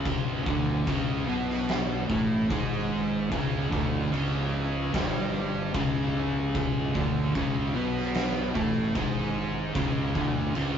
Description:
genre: stoner and doom metal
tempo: 74 BPM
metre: 4/4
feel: straight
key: C# minor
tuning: A4 = 440 Hz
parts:
  - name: deep rumbling drone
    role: sustained chords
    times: 0.6-10.8 s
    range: C#4 to D#5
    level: -44 LUFS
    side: right 4 dB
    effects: none
  - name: cranked stack guitar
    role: riff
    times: 0.0-10.8 s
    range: C#2 to B3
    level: -32 LUFS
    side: right 2 dB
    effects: overdrive
  - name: thick fuzz guitar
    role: riff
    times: 0.0-10.8 s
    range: C#2 to B3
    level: -30 LUFS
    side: left 2 dB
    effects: distortion
  - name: thick fuzz guitar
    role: riff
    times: 0.0-10.8 s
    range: C#2 to B3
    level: -35 LUFS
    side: right 4 dB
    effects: none
  - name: fuzz fingered electric bass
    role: bass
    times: 0.0-10.8 s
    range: C#1 to B1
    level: -35 LUFS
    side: equal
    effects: overdrive
  - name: oversized low-tuned drum kit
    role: drums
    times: 0.1-10.7 s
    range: crash cymbal, kick drum, snare drum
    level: -30 LUFS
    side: left 1 dB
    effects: none
room: moderate stone room reverb, RT60 1.1 s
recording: rough rehearsal-room recording, nothing above 7.7 kHz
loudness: -25 LUFS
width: side -8 dB against mid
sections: 0.0-10.8 A section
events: none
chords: 0.0 C#m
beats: | 0.06 0.87 1.69 2.50 | 3.31 4.12 4.93 5.74 | 6.55 7.35 8.15 8.96 | 9.76 10.56

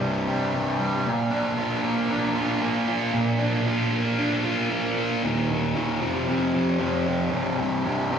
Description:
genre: rock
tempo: 115 BPM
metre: 4/4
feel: straight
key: unclear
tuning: A4 = 439 Hz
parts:
  - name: fuzz guitar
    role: solo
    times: 0.0-8.2 s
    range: C2 to F4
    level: -22 LUFS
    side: equal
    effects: distortion, phaser, diffuse ambient delay
room: wet lush hall reverb, RT60 2.5 s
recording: dreamy mix soaked in reverb, small room ambience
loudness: -22 LUFS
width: side -7 dB against mid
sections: 0.0-5.2 A section; 5.2-8.2 B section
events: none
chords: 0.0 C5; 1.1 Bb; 5.2 Eb5; 6.0 F5; 7.3 C5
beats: 0.01 0.54 | 1.06 1.58 2.10 2.63 | 3.15 3.67 4.19 4.72 | 5.24 5.76 6.28 6.80 | 7.33 7.85

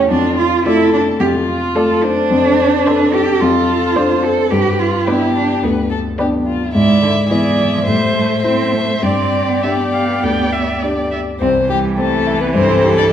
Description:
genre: quick classical-period movement for piano quintet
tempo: 108 BPM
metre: 4/4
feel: rubato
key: C major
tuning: A4 = 441 Hz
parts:
  - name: warm violin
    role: melody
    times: 0.0-13.0 s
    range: E4 to D5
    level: -20 LUFS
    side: left 4 dB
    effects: none
  - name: warm cello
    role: second line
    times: 0.0-13.1 s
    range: D3 to A4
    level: -18 LUFS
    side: right 5 dB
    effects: none
  - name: warm baby grand piano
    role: accompaniment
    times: 0.0-13.1 s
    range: C2 to E5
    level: -16 LUFS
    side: left 2 dB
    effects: none
  - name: dark violin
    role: second line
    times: 0.7-13.1 s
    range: A4 to E5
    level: -22 LUFS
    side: left 2 dB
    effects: none
  - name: warm viola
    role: accompaniment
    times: 0.7-13.1 s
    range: E3 to G5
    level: -22 LUFS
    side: right 3 dB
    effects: none
room: wet recital hall reverb, RT60 1.5 s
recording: none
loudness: -13 LUFS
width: side -9 dB against mid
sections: 0.0-11.4 A section; 11.4-13.1 B section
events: none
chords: 0.1 Dm/F; 2.3 Dm7/F; 4.5 G; 6.7 E7/G#; 7.9 Am; 9.0 G; 11.4 C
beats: | 0.11 0.66 1.21 1.76 | 2.31 2.87 3.42 3.97 | 4.52 5.07 5.63 6.19 | 6.74 7.30 7.86 8.43 | 9.02 9.63 10.23 10.82 | 11.41 11.98 12.55 13.12

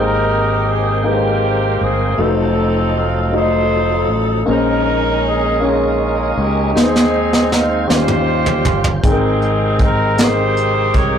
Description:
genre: slow gospel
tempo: 52 BPM (dotted quarters)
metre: 6/8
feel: straight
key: Ab major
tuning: A4 = 440 Hz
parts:
  - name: warm horn section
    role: melody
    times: 0.0-11.2 s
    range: Ab3 to Db5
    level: -18 LUFS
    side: equal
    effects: none
  - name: warm upright piano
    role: accompaniment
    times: 0.0-11.2 s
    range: Ab2 to G5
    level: -19 LUFS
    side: left 2 dB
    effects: none
  - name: tonewheel organ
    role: sustained chords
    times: 0.0-11.2 s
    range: C3 to G5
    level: -23 LUFS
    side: right 2 dB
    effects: slow rotary speaker, overdrive, chorus vibrato
  - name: fingered electric bass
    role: bass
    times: 0.0-11.2 s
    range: F1 to Eb2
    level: -20 LUFS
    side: right 1 dB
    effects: none
  - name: vintage brush drum kit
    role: drums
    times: 6.8-11.1 s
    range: hi-hat, kick drum, snare drum, toms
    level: -15 LUFS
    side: right 1 dB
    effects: none
room: moderate small room ambience, RT60 0.5 s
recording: rough rehearsal-room recording, warm saturation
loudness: -13 LUFS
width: side -8 dB against mid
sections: 0.0-11.2 A section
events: drum fill 6.8-9.0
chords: 0.0 Abmaj9; 2.2 F7b9; 4.5 Bbm11; 6.8 Ab/Eb; 7.9 Eb13; 9.0 Abmaj9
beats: 1.04 | 2.19 3.33 | 4.47 5.61 | 6.75 7.90 | 9.04 10.19

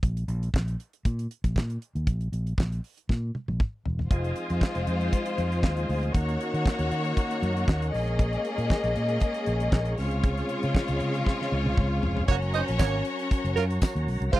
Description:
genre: disco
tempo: 117 BPM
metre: 4/4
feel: straight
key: unclear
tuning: A4 = 437 Hz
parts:
  - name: fingered electric bass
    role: bass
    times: 0.0-14.4 s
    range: Fb1 to Eb3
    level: -28 LUFS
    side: equal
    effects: none
  - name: damped 70s drum kit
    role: drums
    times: 0.0-14.4 s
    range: handclaps, hi-hat, kick drum, snare drum, toms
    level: -25 LUFS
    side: equal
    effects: none
  - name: clear studio string section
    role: second line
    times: 4.1-14.4 s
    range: Ab3 to F5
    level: -30 LUFS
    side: left 3 dB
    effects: none
  - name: tonewheel organ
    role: sustained chords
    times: 4.1-14.4 s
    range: C3 to Bb4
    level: -33 LUFS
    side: right 1 dB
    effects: fast rotary speaker
  - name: warm horn section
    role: stabs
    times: 12.3-14.4 s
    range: Gb3 to Eb5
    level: -27 LUFS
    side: right 8 dB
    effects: none
  - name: tambourine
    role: percussion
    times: 12.8-13.9 s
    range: none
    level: -42 LUFS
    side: left 10 dB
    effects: none
room: little or no reverb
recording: dry, close 1970s-style studio recording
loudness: -24 LUFS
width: side -16 dB against mid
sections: 0.0-4.1 A section; 4.1-12.3 B section; 12.3-14.4 C section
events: drum fill 3.1-4.1, 11.3-12.3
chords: 0.0 N.C.; 4.1 Fm7; 6.1 Ebm7; 7.9 Bbm7; 10.0 Dbmaj7; 12.3 Gb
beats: | 0.02 0.53 1.04 1.55 | 2.06 2.57 3.08 3.59 | 4.10 4.61 5.12 5.63 | 6.15 6.66 7.17 7.68 | 8.19 8.70 9.21 9.73 | 10.24 10.75 11.26 11.77 | 12.29 12.80 13.31 13.82 | 14.33

